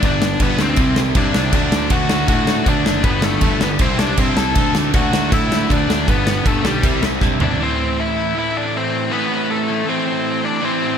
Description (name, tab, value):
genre	punk rock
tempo	158 BPM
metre	4/4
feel	straight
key	unclear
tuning	A4 = 438 Hz
part	bluesy overdriven lead guitar	melody	0.0-11.0 s	G3 to A5	-21 LUFS	left 4 dB	distortion, slapback echo, ping-pong delay
part	crunchy overdriven guitar	riff	0.0-11.0 s	G2 to D4	-22 LUFS	right 11 dB	slapback echo
part	overdriven electric guitar	riff	0.0-11.0 s	G2 to E4	-24 LUFS	left 11 dB	slapback echo
part	fuzz picked electric bass	bass	0.0-7.6 s	F#1 to A2	-23 LUFS	equal	overdrive
part	big rock drum kit	drums	0.0-7.5 s	crash cymbal, kick drum, snare drum, toms	-18 LUFS	equal	none
room	moderate lush hall reverb, RT60 1.7 s, small room ambience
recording	big arena sound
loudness	-15 LUFS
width	side -8 dB against mid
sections	0.0-7.6 A section; 7.6-11.0 B section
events	drum fill 7.2-7.6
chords	0.0 G; 0.8 C; 1.5 D; 3.0 G; 3.8 C; 4.6 D; 6.1 G; 6.8 C; 7.6 Am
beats	| 0.03 0.40 0.78 1.16 | 1.54 1.92 2.29 2.67 | 3.05 3.43 3.81 4.19 | 4.56 4.94 5.32 5.70 | 6.08 6.46 6.84 7.21 | 7.59 7.97 8.35 8.73 | 9.11 9.48 9.86 10.24 | 10.62